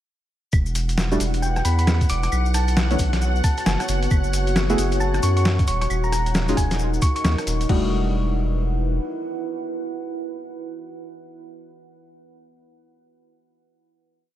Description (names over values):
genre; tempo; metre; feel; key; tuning
UK garage, two-step garage; 134 BPM; 4/4; swing 62% on 16ths; E dorian; A4 = 440 Hz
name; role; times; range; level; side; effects
soft string machine; sustained chords; 0.8-7.7 s; F#5; -33 LUFS; equal; ensemble chorus, sidechain pumping
saturated sub bass; bass; 0.5-9.0 s; D#1 to F#2; -22 LUFS; equal; sidechain pumping
boom bap sampler-style drum kit; drums; 0.5-7.8 s; claves, crash cymbal, hi-hat, rim click, snare drum; -27 LUFS; equal; studio ambience
electronic kick drum; drums; 0.5-7.8 s; none; -20 LUFS; equal; studio ambience
maracas; percussion; 0.5-7.7 s; none; -35 LUFS; left 5 dB; none
deep dark ambient pad; texture; 1.1-11.1 s; B3 to G#5; -30 LUFS; equal; chorus, built-in reverb, sidechain pumping
deep mellow chord stab; stabs; 1.1-10.9 s; D3 to G#4; -27 LUFS; left 1 dB; chorus, diffuse ambient delay
thumb-piano-like synth pluck; melody; 1.4-7.3 s; G5 to D6; -29 LUFS; equal; chorus, diffuse ambient delay
room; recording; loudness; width
light reverb; none; -19 LUFS; side -12 dB against mid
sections
0.5-7.7 drop; 7.7-11.3 final chord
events
drop 0.5-7.7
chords
0.5 Em9; 2.3 B9sus4; 3.9 F#madd9; 5.7 D#m11; 7.7 Em11